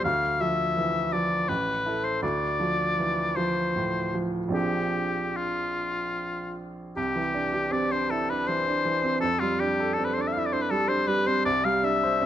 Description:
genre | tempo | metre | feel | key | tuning
classical, impressionist duo for oboe and grand piano | 72-84 BPM | 3/4 | rubato | C major | A4 = 440 Hz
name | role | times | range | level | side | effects
clear oboe | melody | 0.0-12.3 s | F4 to F5 | -26 LUFS | left 3 dB | none
clear baby grand piano | accompaniment | 0.0-12.3 s | A1 to C5 | -28 LUFS | right 3 dB | none
room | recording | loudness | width
moderate recital hall reverb, RT60 1.6 s | close, detailed microphones | -24 LUFS | side -11 dB against mid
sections
0.0-7.0 A section; 7.0-12.3 B section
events
none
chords
0.0 Dm; 1.5 A5; 2.2 Dm9; 4.5 Bb9; 7.0 Cadd9; 9.2 F69; 11.4 Cadd9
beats
| 0.04 0.77 1.48 | 2.22 2.98 3.75 | 4.54 5.37 6.18 | 6.98 7.73 8.48 | 9.21 9.97 10.70 | 11.45 12.21

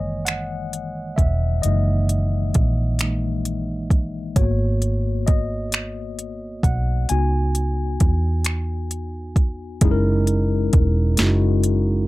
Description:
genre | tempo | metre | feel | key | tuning
slow six-eight R&B | 44 BPM (dotted quarters) | 6/8 | straight | unclear | A4 = 436 Hz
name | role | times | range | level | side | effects
mellow tine electric piano | accompaniment | 0.0-12.1 s | D#3 to G#5 | -25 LUFS | moving between left 6 dB and right 1 dB | auto-pan
vintage muted fingered electric bass | bass | 0.0-12.1 s | E1 to E2 | -21 LUFS | right 1 dB | none
smooth R&B drum kit | drums | 0.3-11.8 s | finger snaps, hi-hat, kick drum, snare drum | -19 LUFS | right 1 dB | overdrive
room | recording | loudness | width
little or no reverb | none | -18 LUFS | side -18 dB against mid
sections
0.0-9.8 A section; 9.8-12.1 B section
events
tine electric piano solo 0.0-9.8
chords
0.0 F#13; 4.4 G#m9; 7.1 C#7sus4; 9.8 F#13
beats
0.27 | 1.63 3.00 | 4.36 5.72 | 7.09 8.45 | 9.82 11.18

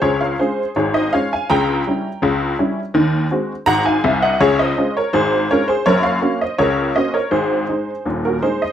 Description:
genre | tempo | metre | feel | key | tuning
ragtime piano | 82 BPM | 2/4 | straight | Db major | A4 = 439 Hz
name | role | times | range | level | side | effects
honky-tonk upright piano | solo | 0.0-8.7 s | Eb1 to Bb5 | -15 LUFS | equal | none
room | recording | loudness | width
light reverb | none | -15 LUFS | side -9 dB against mid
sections
0.0-8.7 A section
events
none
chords
0.0 Db; 1.5 Dbdim7; 2.9 Ab7/Eb; 4.4 Db; 5.9 Gb; 7.3 Ab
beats
| 0.03 0.76 | 1.49 2.22 | 2.95 3.67 | 4.40 5.12 | 5.86 6.59 | 7.32 8.06

